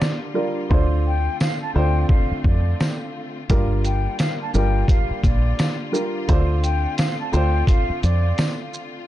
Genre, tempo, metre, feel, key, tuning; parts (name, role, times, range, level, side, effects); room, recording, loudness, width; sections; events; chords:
hip hop, boom-bap hip-hop; 86 BPM; 4/4; swing 60% on 16ths; A4 = 440 Hz
mellow concert flute; melody; 0.0-8.6 s; D5 to A5; -29 LUFS; left 2 dB; high-pass filter, low-pass filter, tape echo
warm upright piano; accompaniment; 0.0-8.8 s; D3 to C5; -27 LUFS; right 2 dB; high-pass filter, low-pass filter
clear studio string section; sustained chords; 0.0-9.1 s; D3 to F4; -32 LUFS; left 2 dB; high-pass filter, low-pass filter
trip hop sampler-style drum kit; drums; 0.0-8.9 s; hi-hat, kick drum, shaker, snare drum; -20 LUFS; equal
tambourine; percussion; 0.0-8.6 s; -40 LUFS; left 3 dB
deep dub fingered electric bass; bass; 0.7-8.3 s; G1 to F2; -19 LUFS; equal
studio reverb; dark, warm production, nothing above 10.9 kHz; -18 LUFS; side -14 dB against mid
0.0-9.1 A section
break 0.0-3.5
0.0 Gm7; 0.7 Dm7; 3.5 Gm7; 6.3 Dm7